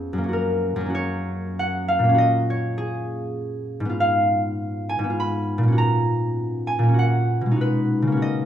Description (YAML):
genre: classical, solo harp piece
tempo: 99 BPM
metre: 3/4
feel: uneven beats, rubato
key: F# major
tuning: A4 = 440 Hz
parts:
  - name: concert harp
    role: solo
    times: 0.0-8.5 s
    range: E#2 to Cb6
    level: -20 LUFS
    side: equal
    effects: none
room: moderate recital hall reverb, RT60 1.4 s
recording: dark, warm production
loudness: -20 LUFS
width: side -10 dB against mid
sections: 0.0-8.5 A section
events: none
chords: 0.3 F#; 2.2 F#/A#; 4.0 Fdim/Ab; 5.8 F#/A#; 7.6 G#m7/B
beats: | 0.33 0.94 1.59 | 2.19 2.77 3.36 | 4.00 4.60 5.20 | 5.79 6.38 6.99 | 7.61 8.22